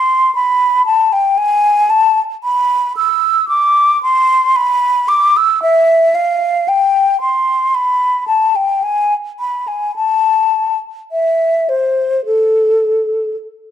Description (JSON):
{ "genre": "classical, baroque-style fantasia for unaccompanied flute", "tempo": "52-58 BPM", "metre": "4/4", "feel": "rubato", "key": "A minor", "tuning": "A4 = 440 Hz", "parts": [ { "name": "mellow hollow concert flute", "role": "solo", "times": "0.0-13.4 s", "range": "A4 to E6", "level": "-11 LUFS", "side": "equal", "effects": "none" } ], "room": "moderate stone room reverb, RT60 1.2 s", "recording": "dark, warm production", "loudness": "-11 LUFS", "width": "side -10 dB against mid", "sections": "0.0-13.7 A section", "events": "none", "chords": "none" }